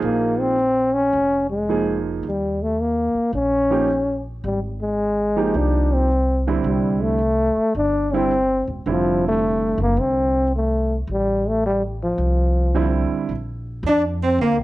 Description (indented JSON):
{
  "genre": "jazz, small-group swing and bop",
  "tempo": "108 BPM",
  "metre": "4/4",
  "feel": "swing 67% on 8ths",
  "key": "unclear",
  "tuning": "A4 = 440 Hz",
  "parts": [
    { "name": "mellow trombone", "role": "melody", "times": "0.0-14.6 s", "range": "F3 to D4", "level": "-19 LUFS", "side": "left 1 dB", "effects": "cassette tape, plate reverb" },
    { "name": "warm baby grand piano", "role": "accompaniment", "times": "0.0-13.3 s", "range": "D3 to Ab4", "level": "-23 LUFS", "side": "right 6 dB", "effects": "plate reverb" },
    { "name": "upright bass", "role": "bass", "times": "0.0-14.6 s", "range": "E1 to F2", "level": "-24 LUFS", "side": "equal", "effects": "none" },
    { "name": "warm tenor saxophone", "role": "second line", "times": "13.9-14.6 s", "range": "Bb3 to D4", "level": "-23 LUFS", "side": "right 6 dB", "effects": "plate reverb" }
  ],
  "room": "moderate studio reverb, RT60 0.5 s",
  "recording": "home recording on cassette",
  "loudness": "-18 LUFS",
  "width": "side -17 dB against mid",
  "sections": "0.0-13.3 A section; 13.3-14.6 B section",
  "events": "none",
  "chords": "0.0 Bbm9; 2.2 Eb7(no3); 4.4 Ab6; 6.7 C; 8.9 Fmaj7; 13.3 Bbadd9"
}